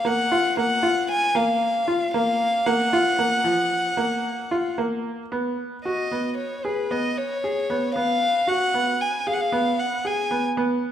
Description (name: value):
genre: contemporary instrumental, contemporary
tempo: 115 BPM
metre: 5/4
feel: straight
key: unclear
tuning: A4 = 437 Hz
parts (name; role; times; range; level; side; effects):
- dark violin; melody; 0.0-10.4 s; Cb5 to Ab5; -23 LUFS; left 1 dB; none
- bright baby grand piano; arpeggios; 0.0-10.9 s; F3 to Ab4; -24 LUFS; right 1 dB; none
room: moderate recital hall reverb, RT60 1.4 s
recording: minimal, uncompressed stereo recording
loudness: -21 LUFS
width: side -10 dB against mid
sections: 0.0-5.3 A section; 5.3-10.9 B section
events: none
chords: 0.0 Fsus4; 5.3 Cb5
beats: | 0.05 0.57 1.10 1.62 2.14 | 2.67 3.19 3.71 4.24 4.78 | 5.32 5.85 6.38 6.91 7.43 | 7.95 8.47 9.00 9.52 10.04 | 10.56